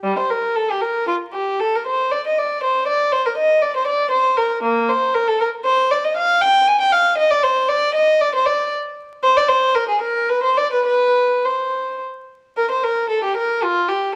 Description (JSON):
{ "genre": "classical, baroque-style suite movement for unaccompanied violin", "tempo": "117 BPM", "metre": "3/4", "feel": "rubato", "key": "C minor from 6.2 s", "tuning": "A4 = 440 Hz", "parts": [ { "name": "dark violin", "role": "solo", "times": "0.0-14.1 s", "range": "G3 to Ab5", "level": "-18 LUFS", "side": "equal", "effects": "none" } ], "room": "moderate stone room reverb, RT60 1.4 s", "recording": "close, detailed microphones, vinyl crackle", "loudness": "-18 LUFS", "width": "mono", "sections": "0.0-12.6 A section; 12.6-14.2 A section", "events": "none", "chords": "none" }